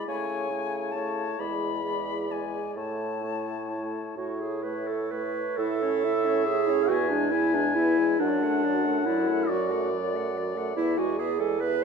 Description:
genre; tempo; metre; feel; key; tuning
classical, slow romantic movement for wind quintet; 42-48 BPM (dotted quarters); 6/8; rubato; A major; A4 = 440 Hz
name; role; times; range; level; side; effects
silver concert flute; melody; 0.0-11.8 s; C#5 to B5; -36 LUFS; left 9 dB; none
warm oboe; second line; 0.0-11.8 s; C#5 to G#5; -34 LUFS; left 5 dB; none
clear French horn; accompaniment; 0.0-11.8 s; F#3 to E4; -35 LUFS; equal; none
warm clarinet; accompaniment; 0.0-11.8 s; D4 to B4; -27 LUFS; right 2 dB; none
mellow bassoon; bass; 0.1-11.8 s; E2 to C#3; -31 LUFS; right 1 dB; none
room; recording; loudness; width
moderate scoring stage reverb, RT60 1.5 s; minimal, uncompressed stereo recording; -24 LUFS; side -5 dB against mid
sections
0.0-5.6 A section; 5.6-11.8 B section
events
none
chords
0.1 A/C#; 1.4 E7; 2.8 A; 6.9 E; 8.2 D/F#; 10.8 E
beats
| 0.08 1.40 | 2.77 4.18 | 5.58 6.89 | 8.20 9.48 | 10.76

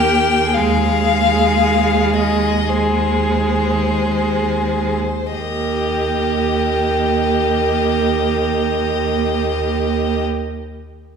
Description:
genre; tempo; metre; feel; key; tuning
classical, slow romantic movement for string quartet; 41-62 BPM; 4/4; rubato; Eb major; A4 = 440 Hz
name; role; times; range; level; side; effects
rich violin; melody; 0.0-10.2 s; C5 to G5; -21 LUFS; left 7 dB; none
rich violin; second line; 0.0-10.2 s; G4 to Ab4; -20 LUFS; left 2 dB; none
clear viola; accompaniment; 0.0-10.2 s; Ab3 to Bb3; -20 LUFS; right 4 dB; none
rich cello; bass; 0.0-10.2 s; Eb2; -21 LUFS; right 3 dB; none
room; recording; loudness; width
wet recital hall reverb, RT60 1.7 s; recorded in a church or concert hall; -15 LUFS; side -6 dB against mid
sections
0.0-5.3 A section; 5.3-10.5 B section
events
slowing down 0.0-5.3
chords
0.0 Eb; 0.5 Ab/Eb; 5.3 Eb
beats
| 0.53 1.58 2.70 3.96 | 5.35 6.62 7.91 9.19

